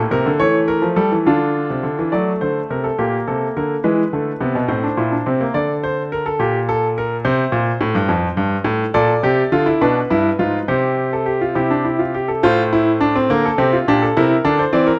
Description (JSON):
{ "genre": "classical, baroque-style 3-part fugue for grand piano", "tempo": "70 BPM (dotted quarters)", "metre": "6/8", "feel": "straight", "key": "F major from 8.9 s", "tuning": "A4 = 440 Hz", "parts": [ { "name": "bright grand piano", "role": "solo", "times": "0.0-15.0 s", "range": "F2 to D5", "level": "-18 LUFS", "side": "equal", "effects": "none" } ], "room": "moderate recital hall reverb, RT60 1.3 s", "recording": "close, detailed microphones", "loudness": "-18 LUFS", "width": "mono", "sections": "0.0-2.1 A section; 2.1-12.4 B section; 12.4-15.0 C section", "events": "none", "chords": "0.4 A7/E; 1.3 Dm; 2.1 D7; 3.0 Gm/Bb; 3.8 E7; 4.7 Am; 5.6 D5; 6.4 Gm/Bb; 7.3 C5; 8.1 F; 8.9 Gm7/Bb; 9.8 Bdim7; 10.7 Csus4; 11.6 C; 12.4 F/A; 13.3 Bb; 14.2 C7", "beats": "| 0.40 1.26 | 2.13 2.99 | 3.85 4.70 | 5.56 6.41 | 7.25 8.10 | 8.94 9.81 | 10.68 11.56 | 12.44 13.30 | 14.16" }